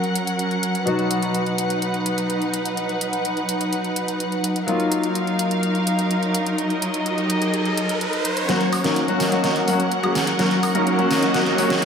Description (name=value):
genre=EDM, festival progressive house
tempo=126 BPM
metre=4/4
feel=straight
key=F# major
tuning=A4 = 440 Hz
part: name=warm concert grand piano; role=accompaniment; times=0.0-11.7 s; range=B2 to F#4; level=-25 LUFS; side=left 3 dB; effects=analog chorus, diffuse ambient delay
part: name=muted studio string section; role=sustained chords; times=0.0-11.8 s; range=F#3 to F#5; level=-22 LUFS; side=equal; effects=none
part: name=pop drum kit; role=drums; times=0.0-11.8 s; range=hi-hat, snare drum, woodblock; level=-26 LUFS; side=equal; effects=overdrive
part: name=riser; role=sound effects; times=6.1-11.8 s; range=none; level=-30 LUFS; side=right 2 dB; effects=none
part: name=supersaw chords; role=riff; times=8.5-11.7 s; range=F#3 to D#5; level=-22 LUFS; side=right 2 dB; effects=cassette tape, low-pass filter, diffuse ambient delay
room=wet lush hall reverb, RT60 1.8 s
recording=dreamy mix soaked in reverb, high-pass filter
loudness=-19 LUFS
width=side -6 dB against mid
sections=0.0-8.5 A section; 8.5-11.8 B section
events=riser 6.1-8.5; build-up 8.5-11.8; drum fill 8.5-11.8; filter sweep on supersaw synth 8.5-11.8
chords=0.0 F#; 0.9 B; 4.7 D#madd9; 8.5 F#